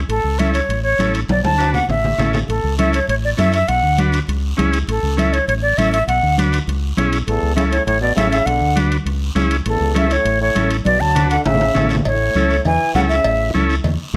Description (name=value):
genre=latin, cumbia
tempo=201 BPM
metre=4/4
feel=straight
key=A major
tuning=A4 = 439 Hz
part: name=fingered electric bass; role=bass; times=0.0-14.2 s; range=A1 to F#2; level=-22 LUFS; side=equal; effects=none
part: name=silver concert flute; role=melody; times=0.1-13.5 s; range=A4 to A5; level=-21 LUFS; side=equal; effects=plate reverb
part: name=congas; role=percussion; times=0.1-14.2 s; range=none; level=-25 LUFS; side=equal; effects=none
part: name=guiro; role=percussion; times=0.1-14.2 s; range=none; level=-36 LUFS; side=equal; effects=none
part: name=timbales and cowbell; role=percussion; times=0.1-14.2 s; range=none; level=-30 LUFS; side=equal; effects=none
part: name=combo organ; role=accompaniment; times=0.4-13.8 s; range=C#4 to B4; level=-24 LUFS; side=equal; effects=none
part: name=bright trombone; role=second line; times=7.3-13.5 s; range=E2 to F#3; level=-27 LUFS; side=equal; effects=none
room=light reverb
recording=close, detailed microphones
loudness=-17 LUFS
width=mono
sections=0.0-2.5 A section; 2.5-12.1 A section; 12.1-14.2 B section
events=drum fill 1.3-2.5, 10.9-12.1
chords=0.1 A; 1.3 Bm7; 1.9 A; 3.7 Bm; 4.3 C#m; 4.9 A; 6.1 Bm; 6.7 C#m; 7.3 A; 8.5 Bm; 9.1 C#m; 9.7 A; 10.9 Bm7; 11.5 A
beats=| 0.10 0.40 0.69 0.99 | 1.29 1.59 1.89 2.19 | 2.49 2.79 3.09 3.38 | 3.68 3.98 4.28 4.58 | 4.88 5.18 5.48 5.78 | 6.08 6.37 6.67 6.97 | 7.27 7.57 7.87 8.17 | 8.47 8.77 9.07 9.37 | 9.66 9.96 10.26 10.56 | 10.86 11.16 11.46 11.76 | 12.05 12.35 12.65 12.95 | 13.25 13.55 13.85 14.14